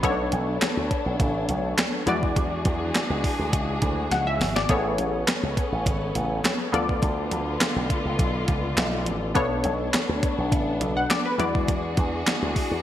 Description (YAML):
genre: early-eighties boogie funk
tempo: 103 BPM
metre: 4/4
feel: straight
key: unclear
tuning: A4 = 440 Hz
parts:
  - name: funky polysynth comp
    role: accompaniment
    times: 0.0-12.8 s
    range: G#3 to F#5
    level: -28 LUFS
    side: left 2 dB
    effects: chorus
  - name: dark studio string section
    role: sustained chords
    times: 0.0-12.8 s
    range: D3 to G#4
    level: -31 LUFS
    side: left 1 dB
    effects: none
  - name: slap bass with an envelope filter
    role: bass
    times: 0.0-12.8 s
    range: G#1 to E2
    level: -28 LUFS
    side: equal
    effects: none
  - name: crisp 8-bit digital drum machine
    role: drums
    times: 0.0-12.7 s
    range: handclaps, hi-hat, kick drum, snare drum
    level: -25 LUFS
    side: right 1 dB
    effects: overdrive, gated reverb
  - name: congas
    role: percussion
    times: 0.0-12.4 s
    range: none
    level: -36 LUFS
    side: right 2 dB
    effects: none
room: moderate lush hall reverb, RT60 1.7 s, digital ambience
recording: bright 1980s-style digital production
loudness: -22 LUFS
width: side -12 dB against mid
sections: 0.0-12.8 A section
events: drum fill 4.1-4.7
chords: 0.0 Bm9; 2.1 E9; 4.7 Amaj9; 6.7 Dm6; 9.4 Bm9; 11.4 E9